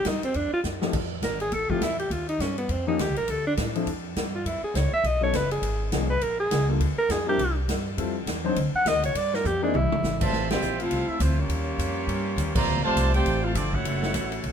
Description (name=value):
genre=jazz, big band swing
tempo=204 BPM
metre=4/4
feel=swing 60% on 8ths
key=F major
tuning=A4 = 440 Hz
part: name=warm alto saxophone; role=melody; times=0.0-10.3 s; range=B3 to Gb5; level=-26 LUFS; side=equal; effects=none
part: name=upright bass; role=bass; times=0.0-14.5 s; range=F#1 to A2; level=-28 LUFS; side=equal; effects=none
part: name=swinging big-band drum kit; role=drums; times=0.0-14.5 s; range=crash cymbal, hi-hat, kick drum, ride cymbal, snare drum, toms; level=-30 LUFS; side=equal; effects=none
part: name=warm concert grand piano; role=accompaniment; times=0.8-9.7 s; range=F3 to C5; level=-30 LUFS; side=left 6 dB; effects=none
part: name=clear trumpet section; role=melody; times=10.2-14.5 s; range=A3 to Bb5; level=-28 LUFS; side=right 2 dB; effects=none
part: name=clear trombone section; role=second line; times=10.2-14.5 s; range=C3 to G4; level=-30 LUFS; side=equal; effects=none
room=light reverb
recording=minimal, uncompressed stereo recording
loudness=-23 LUFS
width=side -8 dB against mid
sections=0.9-10.3 A section; 10.3-14.5 B section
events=drum fill 0.6, 9.4-10.0; alto saxophone solo 0.9-10.3; band accent 10.5, 12.5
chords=0.3 F; 0.9 Fmaj7; 2.1 Eb9; 3.3 Dm; 4.5 Gb5; 5.0 B9; 5.6 Db69; 6.8 Gm7; 7.4 C5; 8.0 Fmaj7; 8.6 Cmadd9; 9.1 Gm7; 9.7 Caug; 10.3 Fmaj7; 11.5 Eb9; 12.7 Dm7; 13.8 Gbm7